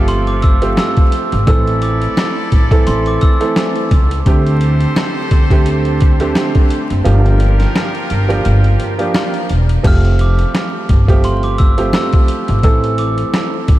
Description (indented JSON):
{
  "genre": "hip hop, boom-bap hip-hop",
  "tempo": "86 BPM",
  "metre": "4/4",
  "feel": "swing 56% on 16ths",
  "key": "unclear",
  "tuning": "A4 = 439 Hz",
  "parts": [
    { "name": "clear upright piano", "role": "accompaniment", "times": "0.0-13.8 s", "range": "D3 to A4", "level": "-18 LUFS", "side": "right 2 dB", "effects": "cassette tape" },
    { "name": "muted trumpet section", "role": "stabs", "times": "0.0-9.5 s", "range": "C4 to D5", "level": "-26 LUFS", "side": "left 1 dB", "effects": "ping-pong delay" },
    { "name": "upright bass", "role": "bass", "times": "0.0-13.8 s", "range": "E1 to D2", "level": "-14 LUFS", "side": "equal", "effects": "none" },
    { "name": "glockenspiel with hard plastic mallets", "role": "melody", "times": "0.1-4.2, 9.9-13.5 s", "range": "C6 to F6", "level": "-22 LUFS", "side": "right 1 dB", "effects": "ping-pong delay" },
    { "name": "boom bap sampler-style drum kit", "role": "drums", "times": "0.1-13.8 s", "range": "crash cymbal, hi-hat, kick drum, rim click, snare drum", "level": "-14 LUFS", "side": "equal", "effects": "none" },
    { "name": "finger snap", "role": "percussion", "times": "0.8-13.5 s", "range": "none", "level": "barely audible", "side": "none", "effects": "none" }
  ],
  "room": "light reverb, small room reverb",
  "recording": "vinyl crackle",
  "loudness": "-11 LUFS",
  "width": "side -15 dB against mid",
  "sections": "0.0-9.8 A section; 9.8-13.8 A section",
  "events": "kick muted 7.1-9.8",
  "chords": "0.0 Fadd9; 1.5 Am; 4.3 D7sus4; 7.1 Gm7; 9.8 Fadd9; 12.6 Am",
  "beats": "0.08 0.78 | 1.47 2.17 2.87 3.57 | 4.26 4.96 5.66 6.36 | 7.05 7.75 8.45 9.15 | 9.85 10.54 11.24 11.94 | 12.64 13.33"
}